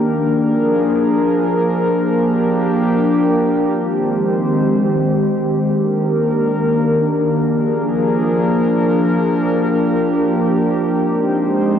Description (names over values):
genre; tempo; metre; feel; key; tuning
hip hop; free time; none; none; unclear; A4 = 438 Hz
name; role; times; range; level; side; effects
warbly tape-like pad; solo; 0.0-11.8 s; Eb3 to C5; -14 LUFS; equal; chorus, built-in reverb, analog delay
room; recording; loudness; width
light reverb, digital ambience; dry, gritty hardware recording; -14 LUFS; side -8 dB against mid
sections
0.0-11.8 A section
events
none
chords
0.1 Bb7; 1.9 Gm7; 3.7 Abmaj7; 5.5 Ebmaj7; 7.4 Bb7; 9.2 Gm7; 11.0 Abmaj7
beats
free time